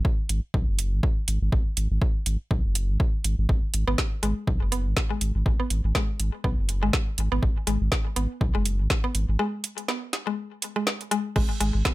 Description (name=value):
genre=minimal techno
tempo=122 BPM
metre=4/4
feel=swing 57% on 16ths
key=G# minor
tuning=A4 = 440 Hz
part: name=saturated sub bass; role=bass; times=0.0-11.8 s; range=F#1 to B1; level=-25 LUFS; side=equal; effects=tube saturation, sidechain pumping
part: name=electronic kick drum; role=drums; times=0.0-11.9 s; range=none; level=-25 LUFS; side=equal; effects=small room ambience
part: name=garage drum kit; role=drums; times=0.3-11.9 s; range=crash cymbal, hi-hat, snare drum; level=-28 LUFS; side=right 1 dB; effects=overdrive, small room ambience
part: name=mallet-like synth pluck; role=riff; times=3.9-11.9 s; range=G#3 to B3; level=-30 LUFS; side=left 1 dB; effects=chorus, sidechain pumping, ping-pong delay
room=little or no reverb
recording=none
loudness=-23 LUFS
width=side -18 dB against mid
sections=0.0-11.9 A section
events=break 9.4-11.4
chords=0.0 G#7(no3)